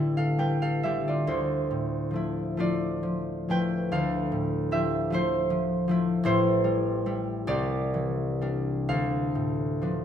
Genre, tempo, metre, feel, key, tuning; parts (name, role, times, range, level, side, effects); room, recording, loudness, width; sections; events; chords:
classical, solo harp piece; 42-54 BPM (dotted quarters); 6/8; rubato; D dorian; A4 = 444 Hz
concert harp; solo; 0.0-10.0 s; A1 to G5; -25 LUFS; equal
moderate recital hall reverb, RT60 1.6 s; -25 LUFS; side -9 dB against mid
0.0-10.0 A section
0.0 A7sus4; 1.3 Dm9; 3.9 Fmaj7/D; 6.3 Am7; 7.5 Cadd9; 8.9 Dm6